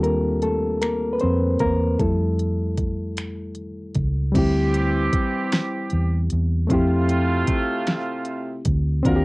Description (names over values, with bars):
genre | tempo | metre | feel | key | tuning
slow six-eight R&B | 51 BPM (dotted quarters) | 6/8 | straight | unclear | A4 = 440 Hz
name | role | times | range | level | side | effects
reed electric piano | accompaniment | 0.0-9.2 s | G3 to C5 | -23 LUFS | left 1 dB | cassette tape
vintage muted fingered electric bass | bass | 0.0-9.2 s | C#2 to F2 | -22 LUFS | equal | none
smooth R&B drum kit | drums | 0.0-9.2 s | crash cymbal, finger snaps, hi-hat, kick drum, snare drum | -25 LUFS | equal | overdrive, cassette tape
warm horn section | stabs | 4.4-9.2 s | C3 to Bb4 | -26 LUFS | right 3 dB | cassette tape
room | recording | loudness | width
light reverb | home recording on cassette | -19 LUFS | side -24 dB against mid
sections
0.0-4.3 A section; 4.3-9.2 B section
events
reed electric piano solo 0.0-4.3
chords
0.0 Ebmaj13; 2.0 Fmaj7; 4.3 D9sus4; 6.7 Fmaj7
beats
0.82 | 2.00 3.17 | 4.35 5.52 | 6.70 7.88 | 9.05